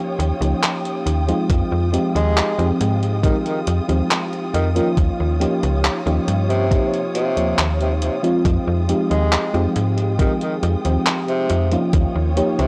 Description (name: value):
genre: vaporwave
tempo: 69 BPM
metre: 4/4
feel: straight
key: F minor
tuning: A4 = 440 Hz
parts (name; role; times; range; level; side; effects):
- mellow FM electric piano; accompaniment; 0.0-12.7 s; F3 to Db5; -24 LUFS; equal; subtle chorus
- dark studio string section; sustained chords; 0.0-12.7 s; Ab3 to Eb6; -32 LUFS; equal; none
- slap-like FM bass; bass; 0.2-12.7 s; Db2 to Ab2; -22 LUFS; equal; none
- detuned 8-bit digital drum machine; drums; 0.2-12.7 s; handclaps, hi-hat; -26 LUFS; equal; vintage 12-bit sampler grit
- electronic kick drum; drums; 1.5-12.1 s; none; -21 LUFS; equal; overdrive, vintage 12-bit sampler grit
- breathy tenor saxophone; melody; 2.2-12.7 s; C3 to Ab3; -28 LUFS; equal; tape echo
room: light reverb, digital ambience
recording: dry, gritty hardware recording, cassette tape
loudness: -19 LUFS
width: mono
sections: 0.0-12.7 A section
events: none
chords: 0.0 Eb9; 1.5 Fm9; 5.0 Eb9; 8.5 Fm9; 11.9 Eb9